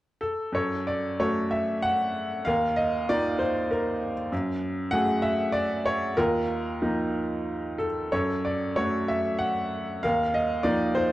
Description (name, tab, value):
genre	classical, lyrical solo piano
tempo	95 BPM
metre	3/4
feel	uneven beats, rubato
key	unclear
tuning	A4 = 440 Hz
part	bright upright piano	solo	0.2-11.1 s	D#2 to F#5	-24 LUFS	equal	none
room	light reverb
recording	dark, warm production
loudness	-24 LUFS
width	side -16 dB against mid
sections	0.5-11.1 A section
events	none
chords	0.0 N.C.; 0.5 F#m; 2.5 D#sus2; 4.3 F#madd9; 6.2 D#sus2; 8.1 F#m; 10.0 D#sus2